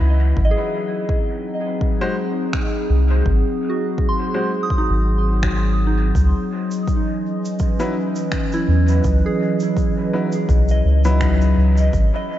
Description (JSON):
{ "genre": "ambient dub", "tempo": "83 BPM", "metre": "4/4", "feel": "swing 55% on 16ths", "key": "C# minor", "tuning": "A4 = 441 Hz", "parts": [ { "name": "warbly tape-like pad", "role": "sustained chords", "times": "0.0-12.4 s", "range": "E3 to F#5", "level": "-22 LUFS", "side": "equal", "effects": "chorus, built-in reverb" }, { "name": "soft synth bell", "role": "arpeggios", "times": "0.0-12.4 s", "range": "D#4 to D#6", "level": "-27 LUFS", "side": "right 1 dB", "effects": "chorus, dub echo" }, { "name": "clear upright piano", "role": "stabs", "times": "0.0-11.9 s", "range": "F#3 to B#4", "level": "-29 LUFS", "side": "left 2 dB", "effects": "dub echo" }, { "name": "soft dub sub bass", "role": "bass", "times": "0.0-12.1 s", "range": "G#1 to E2", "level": "-16 LUFS", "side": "equal", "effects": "none" }, { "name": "electronic kick drum", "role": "drums", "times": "0.4-12.1 s", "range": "none", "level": "-21 LUFS", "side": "equal", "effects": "none" }, { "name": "finger snaps and cabasa", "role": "drums", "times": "2.5-12.1 s", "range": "none", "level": "-32 LUFS", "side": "right 1 dB", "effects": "dub echo" } ], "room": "moderate lush hall reverb, RT60 2.6 s", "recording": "dreamy mix soaked in reverb, nothing above 7.7 kHz", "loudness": "-16 LUFS", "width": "side -12 dB against mid", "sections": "0.0-12.4 A section", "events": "none", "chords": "0.4 G#7; 6.2 C#m11", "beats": "| 0.37 1.09 1.82 2.54 | 3.26 3.98 4.71 5.43 | 6.15 6.88 7.60 8.32 | 9.04 9.77 10.49 11.21 | 11.94" }